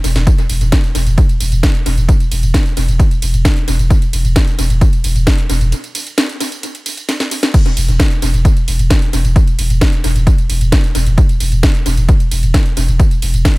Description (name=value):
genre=driving peak-time techno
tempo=132 BPM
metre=4/4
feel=straight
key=unclear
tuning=A4 = 440 Hz
part: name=saturated sub bass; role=bass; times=0.0-13.4 s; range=E1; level=-14 LUFS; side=equal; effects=overdrive, sidechain pumping, low-pass filter
part: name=techno drum kit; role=drums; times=0.0-13.5 s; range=crash cymbal, hi-hat, ride cymbal, snare drum, tambourine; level=-19 LUFS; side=equal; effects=analog delay
part: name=electronic kick drum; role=drums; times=0.3-13.5 s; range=none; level=-12 LUFS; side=equal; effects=none
room=digital ambience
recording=echo-heavy mix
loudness=-11 LUFS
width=side -22 dB against mid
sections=0.0-13.6 A section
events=break 5.7-7.5; drum fill 7.1-7.5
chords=none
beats=| 0.27 0.72 1.18 1.63 | 2.09 2.54 3.00 3.45 | 3.90 4.36 4.81 5.27 | 5.72 6.18 6.63 7.09 | 7.54 8.00 8.45 8.90 | 9.36 9.81 10.27 10.72 | 11.18 11.63 12.09 12.54 | 12.99 13.45